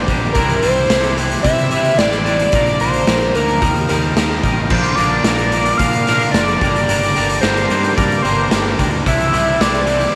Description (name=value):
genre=indie rock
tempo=110 BPM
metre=4/4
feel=straight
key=unclear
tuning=A4 = 440 Hz
part: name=overdriven synth lead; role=melody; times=0.0-10.1 s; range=Bb4 to F5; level=-20 LUFS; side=equal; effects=distortion, phaser
part: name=string machine, full ensemble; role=sustained chords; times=0.0-10.2 s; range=G4 to Eb6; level=-32 LUFS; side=equal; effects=none
part: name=overdriven semi-hollow guitar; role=riff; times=0.0-10.1 s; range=Eb3 to G4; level=-26 LUFS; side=equal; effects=none
part: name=twangy electric guitar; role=riff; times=0.0-10.1 s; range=G2 to Bb4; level=-23 LUFS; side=equal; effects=lush chorus
part: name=fuzz fingered electric bass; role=bass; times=0.0-10.1 s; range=F#1 to C3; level=-24 LUFS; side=equal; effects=overdrive
part: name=raw garage drum kit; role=drums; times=0.1-10.1 s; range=crash cymbal, hi-hat, kick drum, snare drum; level=-21 LUFS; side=equal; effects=none
room=light reverb, small room ambience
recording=none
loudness=-15 LUFS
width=mono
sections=0.0-10.2 A section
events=none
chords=0.3 Cadd9; 2.5 Bb; 3.6 Ebadd9; 4.7 Bb; 6.6 Gm; 9.1 Cadd9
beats=| 0.35 0.90 1.44 1.99 | 2.53 3.08 3.62 4.17 | 4.71 5.26 5.80 6.34 | 6.88 7.43 7.97 8.51 | 9.06 9.60 10.14